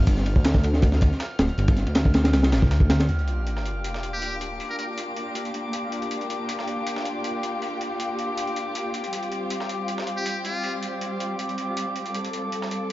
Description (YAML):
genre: drum and bass, jungle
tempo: 159 BPM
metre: 4/4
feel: straight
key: G minor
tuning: A4 = 440 Hz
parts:
  - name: detuned saw bass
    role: bass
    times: 0.0-3.1 s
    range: D1 to D2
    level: -22 LUFS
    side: equal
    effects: tube saturation
  - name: drifting glass-harmonics texture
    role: texture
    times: 0.0-12.9 s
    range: D6 to F6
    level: -35 LUFS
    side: left 1 dB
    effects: chorus, built-in reverb
  - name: crunchy breakbeat drum kit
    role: drums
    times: 0.1-3.1 s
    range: kick drum, ride cymbal, snare drum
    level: -20 LUFS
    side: equal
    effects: none
  - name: dusty soul sampler-style drum kit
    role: drums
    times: 0.1-12.9 s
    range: hi-hat, snare drum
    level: -36 LUFS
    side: equal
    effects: overdrive, high-pass filter on hats, high-pass filter on snare, high-pass filter on room
  - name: warm studio string section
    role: sustained chords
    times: 3.1-12.9 s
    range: G3 to A4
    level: -29 LUFS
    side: left 1 dB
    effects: vintage 12-bit sampler grit
  - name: sub drop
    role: sound effects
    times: 3.1-4.6 s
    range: none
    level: -28 LUFS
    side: equal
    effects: none
  - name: trumpet with metal mute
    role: melody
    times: 4.1-4.8, 10.2-10.7 s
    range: F4 to Bb4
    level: -34 LUFS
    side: equal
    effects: dub echo
room: light reverb, small room ambience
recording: dark, warm production, vinyl crackle, nothing above 7.5 kHz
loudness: -22 LUFS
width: side -16 dB against mid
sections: 0.0-3.1 A section; 3.1-12.9 B section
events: impact 3.1-4.6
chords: 0.0 Fsus2; 3.1 Gm7; 9.1 Fsus2/G